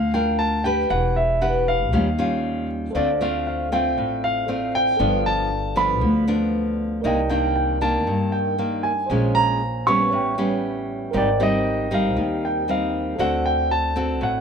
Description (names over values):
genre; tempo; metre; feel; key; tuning
bossa nova; 117 BPM; 4/4; straight; G minor; A4 = 440 Hz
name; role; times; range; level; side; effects
warm grand piano; melody; 0.0-14.4 s; D5 to Db6; -23 LUFS; right 1 dB; none
nylon-string guitar; accompaniment; 0.0-14.4 s; G2 to B4; -24 LUFS; left 1 dB; none
upright bass; bass; 0.0-14.4 s; E1 to G2; -25 LUFS; equal; none
tine electric piano; accompaniment; 2.9-14.4 s; Eb4 to Ab5; -29 LUFS; right 4 dB; none
room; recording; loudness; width
light reverb; minimal, uncompressed stereo recording; -19 LUFS; side -6 dB against mid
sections
0.0-14.4 A section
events
none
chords
0.0 Gm7; 0.9 Em7; 1.9 Eb9; 3.0 Dm7; 5.0 G7; 7.0 Cm9; 9.1 Bbm7; 10.1 A9; 11.1 Abmaj7; 13.2 D7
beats
0.39 | 0.90 1.42 1.93 2.44 | 2.95 3.46 3.97 4.49 | 5.00 5.51 6.02 6.53 | 7.04 7.56 8.07 8.58 | 9.09 9.61 10.12 10.63 | 11.14 11.65 12.17 12.68 | 13.19 13.71 14.22